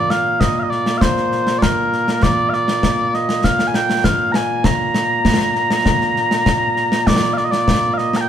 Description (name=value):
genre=scottish traditional, Scottish pipe music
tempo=99 BPM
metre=4/4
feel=straight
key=Bb mixolydian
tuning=A4 = 441 Hz
part: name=mellow small bagpipes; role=melody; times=0.0-8.3 s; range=Bb2 to Bb5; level=-16 LUFS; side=equal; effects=none
part: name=concert snare drum and concert bass drum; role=drums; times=0.1-8.3 s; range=none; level=-18 LUFS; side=left 1 dB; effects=none
room=moderate stone room reverb, RT60 1.2 s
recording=band playing live in one room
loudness=-14 LUFS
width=side -9 dB against mid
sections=0.0-7.1 A section; 7.1-8.3 A section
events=none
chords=none